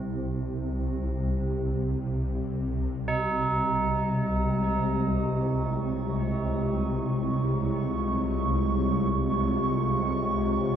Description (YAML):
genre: dark ambient drone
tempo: free time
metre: none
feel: none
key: unclear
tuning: A4 = 441 Hz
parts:
  - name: tubular bells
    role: arpeggios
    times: 0.0-10.8 s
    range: C4 to Eb4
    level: -33 LUFS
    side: right 3 dB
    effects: diffuse ambient delay, shimmer reverb
  - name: swarming drone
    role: drone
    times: 0.0-10.8 s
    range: C2 to C3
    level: -27 LUFS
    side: equal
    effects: built-in reverb
  - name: dark analog pad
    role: sustained chords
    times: 3.7-10.8 s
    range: C3 to Db6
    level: -28 LUFS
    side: right 1 dB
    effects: chorus, shimmer reverb
room: wet huge ambient reverb, RT60 8.1 s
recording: worn, warbling old tape, cassette tape, warbly pitch drift, small room ambience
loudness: -25 LUFS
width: side -9 dB against mid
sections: 0.0-10.8 A section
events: filter sweep on synth drone 0.0-10.8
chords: 0.0 C5; 2.8 Db/C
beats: free time